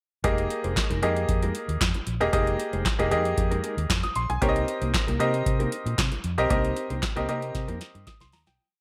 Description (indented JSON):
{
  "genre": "early-eighties boogie funk",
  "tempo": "115 BPM",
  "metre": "4/4",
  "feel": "straight",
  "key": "F minor",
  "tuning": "A4 = 440 Hz",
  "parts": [
    { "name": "bright grand piano", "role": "accompaniment", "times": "0.2-8.7 s", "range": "Bb3 to Eb6", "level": "-29 LUFS", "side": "equal", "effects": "none" },
    { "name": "mellow electric guitar", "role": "riff", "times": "0.2-8.5 s", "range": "Ab3 to C5", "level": "-37 LUFS", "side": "equal", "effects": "analog chorus" },
    { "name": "vintage muted fingered electric bass", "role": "bass", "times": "0.2-8.6 s", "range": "F1 to C3", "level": "-32 LUFS", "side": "equal", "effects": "none" },
    { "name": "booming analog drum machine", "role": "drums", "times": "0.2-8.6 s", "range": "handclaps, hi-hat, kick drum, snare drum", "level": "-29 LUFS", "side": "equal", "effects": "gated reverb" }
  ],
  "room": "light reverb, digital ambience",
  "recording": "none",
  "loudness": "-26 LUFS",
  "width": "mono",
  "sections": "0.2-8.6 verse",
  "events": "fade-out 6.5-8.6; drum fill 7.5-8.6",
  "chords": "0.2 Fm11; 4.4 Cm7"
}